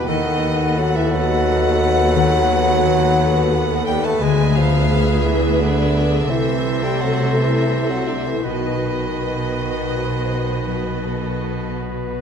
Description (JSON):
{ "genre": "classical, slow romantic movement for symphony orchestra", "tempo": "53-59 BPM (dotted quarters)", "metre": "12/8", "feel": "rubato", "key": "unclear", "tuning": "A4 = 440 Hz", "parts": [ { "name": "dark chamber violin section", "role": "melody", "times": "0.0-12.2 s", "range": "A4 to F#5", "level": "-30 LUFS", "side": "left 2 dB", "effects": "none" }, { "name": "clear chamber violin section", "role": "second line", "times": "0.0-11.8 s", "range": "D5 to A5", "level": "-29 LUFS", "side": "left 2 dB", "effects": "none" }, { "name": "clear clarinet", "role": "second line", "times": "0.0-12.2 s", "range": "F#4 to A4", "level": "-30 LUFS", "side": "right 1 dB", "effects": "none" }, { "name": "mellow hollow small flute group", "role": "second line", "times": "0.0-12.2 s", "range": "A4 to F#5", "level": "-28 LUFS", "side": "left 1 dB", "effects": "none" }, { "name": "warm oboe", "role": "second line", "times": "0.0-12.2 s", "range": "B4 to C5", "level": "-31 LUFS", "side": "right 1 dB", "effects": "none" }, { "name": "clear bassoon", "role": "accompaniment", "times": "0.0-11.7 s", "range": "D3 to A3", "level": "-24 LUFS", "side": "right 2 dB", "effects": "none" }, { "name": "rich chamber viola section", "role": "accompaniment", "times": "0.0-12.2 s", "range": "A3 to A4", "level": "-29 LUFS", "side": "right 2 dB", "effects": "none" }, { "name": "dark French horn section", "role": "sustained chords", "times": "0.0-11.8 s", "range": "D4 to A4", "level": "-25 LUFS", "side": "left 3 dB", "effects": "none" }, { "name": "concert harp", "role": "arpeggios", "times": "0.0-12.2 s", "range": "B2 to B4", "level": "-24 LUFS", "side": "left 10 dB", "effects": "none" }, { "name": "clear chamber double bass section", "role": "bass", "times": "0.0-12.2 s", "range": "B1 to D#2", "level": "-23 LUFS", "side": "right 4 dB", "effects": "none" }, { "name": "rich chamber cello section", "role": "bass", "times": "0.0-12.2 s", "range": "D2 to C3", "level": "-25 LUFS", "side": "equal", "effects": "none" } ], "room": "moderate scoring stage reverb, RT60 1.5 s", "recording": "none", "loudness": "-16 LUFS", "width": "side -7 dB against mid", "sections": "0.0-12.2 A section", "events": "none", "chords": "0.1 B7/D#; 4.2 E7/D; 6.3 Am/C; 8.4 B" }